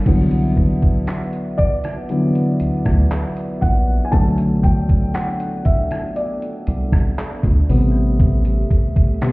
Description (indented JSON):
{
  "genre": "contemporary R&B",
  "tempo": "59 BPM",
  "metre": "4/4",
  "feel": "straight",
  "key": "unclear",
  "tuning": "A4 = 440 Hz",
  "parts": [
    { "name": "felt-muted upright piano", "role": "accompaniment", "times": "0.0-9.3 s", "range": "C3 to A5", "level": "-20 LUFS", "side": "left 1 dB", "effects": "none" },
    { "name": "glass harmonica", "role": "sustained chords", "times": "0.2-9.3 s", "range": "A3 to F#5", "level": "-30 LUFS", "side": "right 1 dB", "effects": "none" },
    { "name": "rubbery square bass", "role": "bass", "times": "0.1-8.6 s", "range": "A1 to D2", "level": "-18 LUFS", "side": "equal", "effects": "none" },
    { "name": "detuned 8-bit digital drum machine", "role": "drums", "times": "0.1-9.3 s", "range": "crash cymbal, handclaps, hi-hat, kick drum, rim click", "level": "-17 LUFS", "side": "equal", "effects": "none" }
  ],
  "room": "digital ambience",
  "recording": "heard muffled through a wall, stone room reverb, EQ",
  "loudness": "-15 LUFS",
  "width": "side -23 dB against mid",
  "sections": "0.1-9.3 A section",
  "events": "felt piano solo 0.1-9.3",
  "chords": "0.1 Cmaj9#11; 4.1 Bm7; 7.7 Am9"
}